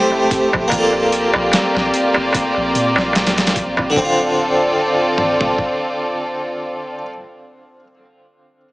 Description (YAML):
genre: trip hop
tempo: 74 BPM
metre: 4/4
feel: swing 56% on 16ths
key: D minor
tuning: A4 = 440 Hz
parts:
  - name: harpsichord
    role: accompaniment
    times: 0.0-7.1 s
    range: D3 to C5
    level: -19 LUFS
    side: equal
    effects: tremolo, tape echo
  - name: clear studio violin section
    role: sustained chords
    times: 0.0-7.1 s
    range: A3 to D5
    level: -18 LUFS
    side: equal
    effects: vintage 12-bit sampler grit
  - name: soft 808-style bass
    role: bass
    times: 0.0-6.4 s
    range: D1 to Bb2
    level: -30 LUFS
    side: equal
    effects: none
  - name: bowed-like drone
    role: texture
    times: 0.0-4.0 s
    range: C4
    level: -27 LUFS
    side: left 1 dB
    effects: built-in reverb
  - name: darbuka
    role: percussion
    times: 0.1-3.9 s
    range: none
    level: -20 LUFS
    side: right 1 dB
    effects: none
  - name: boom bap sampler-style drum kit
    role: drums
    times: 0.3-5.8 s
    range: hi-hat, kick drum, snare drum, toms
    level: -20 LUFS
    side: equal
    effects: overdrive
room: moderate lush hall reverb, RT60 2.3 s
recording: small speaker sound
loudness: -14 LUFS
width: side -21 dB against mid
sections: 0.0-4.0 A section; 4.0-7.2 B section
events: filter sweep on 808-style bass 0.0-4.0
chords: 0.0 Am7; 0.7 Gm7; 4.0 Dm7